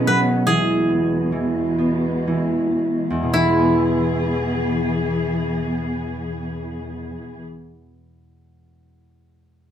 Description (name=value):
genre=children's music, lullaby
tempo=53-77 BPM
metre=3/4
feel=rubato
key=E major pentatonic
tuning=A4 = 440 Hz
part: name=koto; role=melody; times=0.0-7.4 s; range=E4 to B4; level=-23 LUFS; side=right 1 dB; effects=none
part: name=concert harp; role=accompaniment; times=0.0-7.6 s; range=E2 to E4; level=-21 LUFS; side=right 1 dB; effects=none
part: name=dark studio string section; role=sustained chords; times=0.0-7.4 s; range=E2 to G#4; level=-24 LUFS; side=left 1 dB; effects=none
room=wet studio reverb, RT60 0.6 s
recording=band playing live in one room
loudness=-18 LUFS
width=side -9 dB against mid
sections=0.0-3.3 A section; 3.3-9.7 B section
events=slowing down 0.0-3.3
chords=0.5 E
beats=| 0.46 1.31 2.26 | 3.33 4.46 5.57 | 6.67